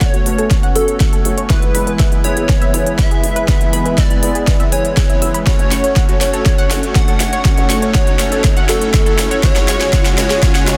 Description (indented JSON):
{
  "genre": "progressive house",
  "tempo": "121 BPM",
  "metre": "4/4",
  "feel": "straight",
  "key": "F# minor",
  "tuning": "A4 = 440 Hz",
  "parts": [
    { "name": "plucky unison lead", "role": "melody", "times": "0.0-10.8 s", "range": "A4 to F#5", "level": "-23 LUFS", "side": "equal", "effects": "analog chorus, digital delay" },
    { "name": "lush unison pad", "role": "sustained chords", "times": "0.0-10.8 s", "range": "C#3 to B4", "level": "-28 LUFS", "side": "equal", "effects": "chorus, sidechain pumping" },
    { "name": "analog pluck", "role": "arpeggios", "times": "0.0-10.7 s", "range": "E4 to E6", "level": "-27 LUFS", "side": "equal", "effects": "chorus, cassette tape, sidechain pumping, dub echo" },
    { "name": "soft supersaw", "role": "stabs", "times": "0.0-10.8 s", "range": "C#3 to C#5", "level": "-24 LUFS", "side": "equal", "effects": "sidechain pumping, low-pass filter, dub echo" },
    { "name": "electronic kick drum", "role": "drums", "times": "0.0-10.5 s", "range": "none", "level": "-16 LUFS", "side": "equal", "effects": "none" },
    { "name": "pop drum kit", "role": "drums", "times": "0.0-10.8 s", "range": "hi-hat, snare drum", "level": "-24 LUFS", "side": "equal", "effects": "sidechain pumping on hats, high-pass filter on hats, high-pass filter on snare" },
    { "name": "riser", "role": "sound effects", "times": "3.2-10.8 s", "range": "none", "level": "-33 LUFS", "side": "equal", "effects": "none" },
    { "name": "plucky analog bass", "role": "bass", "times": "0.3-10.8 s", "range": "E1 to C#2", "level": "-31 LUFS", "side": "equal", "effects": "none" }
  ],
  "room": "light reverb",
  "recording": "dense, heavily limited modern master",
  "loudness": "-14 LUFS",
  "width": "mono",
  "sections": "0.0-10.8 A section",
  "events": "build-up 0.0-10.8; drum fill 0.0-10.8; filter sweep on synth pluck 0.0-10.8; filter sweep on supersaw synth 0.0-10.8; filter sweep on analog synth pad 0.0-10.8",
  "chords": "0.0 F#m; 1.5 E; 5.5 F#m; 9.4 C#sus4",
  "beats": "0.01 0.51 1.00 | 1.50 2.00 2.49 2.99 | 3.48 3.98 4.48 4.97 | 5.47 5.96 6.46 6.96 | 7.45 7.95 8.44 8.94 | 9.43 9.93 10.43"
}